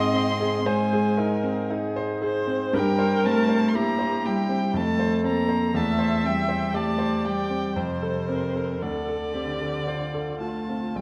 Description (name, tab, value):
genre	classical, slow romantic movement for piano quartet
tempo	54-61 BPM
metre	3/4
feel	rubato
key	unclear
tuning	A4 = 444 Hz
part	muted violin	melody	0.0-11.0 s	C5 to C6	-33 LUFS	equal	none
part	muted cello	second line	0.0-11.0 s	C3 to C4	-29 LUFS	equal	none
part	clear grand piano	accompaniment	0.0-11.0 s	Bb1 to C5	-30 LUFS	equal	none
part	muted viola	accompaniment	0.0-11.0 s	F4 to E5	-32 LUFS	equal	none
room	wet scoring stage reverb, RT60 1.8 s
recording	none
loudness	-25 LUFS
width	mono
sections	0.0-11.0 A section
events	none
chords	0.0 Ab; 2.7 C7/G; 4.8 F; 5.8 C/E; 7.8 F; 8.8 Dm7